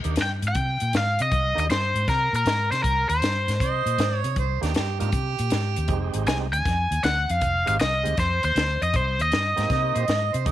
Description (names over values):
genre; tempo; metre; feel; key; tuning
electric blues shuffle; 157 BPM; 4/4; swing 67% on 8ths; C minor; A4 = 440 Hz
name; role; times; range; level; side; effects
tonewheel organ; accompaniment; 0.0-1.7, 4.6-10.5 s; Ab3 to G4; -34 LUFS; right 12 dB; slow rotary speaker, overdrive
vintage muted fingered electric bass; bass; 0.0-10.5 s; F1 to C3; -26 LUFS; equal; none
compact cocktail drum kit; drums; 0.0-10.5 s; hi-hat, kick drum, snare drum; -28 LUFS; left 1 dB; none
cranked stack guitar; melody; 0.2-10.3 s; Bb4 to Ab5; -24 LUFS; left 1 dB; overdrive
warm harmonica; second line; 3.6-6.1, 9.7-10.5 s; G4 to Eb5; -28 LUFS; right 12 dB; overdrive
room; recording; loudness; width
light reverb, small room ambience; 1960s-style stereo; -21 LUFS; side -13 dB against mid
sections
0.0-10.5 A section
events
none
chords
0.0 Cm9; 5.9 Fm9; 8.9 Cm7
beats
0.17 0.55 0.93 | 1.31 1.69 2.07 2.46 | 2.84 3.22 3.60 3.98 | 4.36 4.74 5.13 5.51 | 5.89 6.27 6.65 7.03 | 7.42 7.80 8.18 8.56 | 8.94 9.32 9.71 10.09 | 10.47